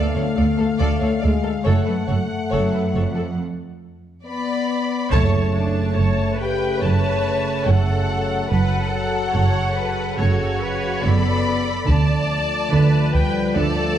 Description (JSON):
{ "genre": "cinematic, epic orchestral film score", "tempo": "71 BPM", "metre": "4/4", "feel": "straight", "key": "F# harmonic minor, F# phrygian from 5.1 s", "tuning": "A4 = 441 Hz", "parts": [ { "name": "bright symphonic violin section", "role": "melody", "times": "0.0-14.0 s", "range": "C#5 to B5", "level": "-28 LUFS", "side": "left 2 dB", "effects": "none" }, { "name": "rich symphonic violin section", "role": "second line", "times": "0.0-14.0 s", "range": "F#4 to D5", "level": "-28 LUFS", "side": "left 2 dB", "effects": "none" }, { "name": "clear symphonic viola section", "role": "accompaniment", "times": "0.0-14.0 s", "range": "D4 to D5", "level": "-29 LUFS", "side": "equal", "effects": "none" }, { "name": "mellow French horn section", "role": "sustained chords", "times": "0.0-14.0 s", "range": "C#3 to G4", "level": "-26 LUFS", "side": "left 6 dB", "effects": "none" }, { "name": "clear symphonic double bass section", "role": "bass", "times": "0.0-14.0 s", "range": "F#1 to D2", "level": "-22 LUFS", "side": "right 3 dB", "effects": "none" }, { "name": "rich symphonic cello section", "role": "bass", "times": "0.0-14.0 s", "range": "D2 to D3", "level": "-24 LUFS", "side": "right 2 dB", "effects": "none" }, { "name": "mellow trombone section", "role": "sustained chords", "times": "5.1-14.0 s", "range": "C#3 to A3", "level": "-28 LUFS", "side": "right 3 dB", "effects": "none" }, { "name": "taiko ensemble", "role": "drums", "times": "5.1-13.5 s", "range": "none", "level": "-22 LUFS", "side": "equal", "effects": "none" } ], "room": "moderate scoring stage reverb, RT60 1.5 s", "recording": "dark, warm production", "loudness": "-17 LUFS", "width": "side -10 dB against mid", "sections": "0.0-5.1 A section; 5.1-14.0 B section", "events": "break 3.4-5.1; band accent 5.1-6.0", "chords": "0.0 Dm; 1.7 F#m; 11.9 Dm", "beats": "0.80 | 1.66 2.53 3.39 4.26 | 5.13 5.97 6.82 7.66 | 8.51 9.35 10.19 11.04 | 11.88 12.72 13.56" }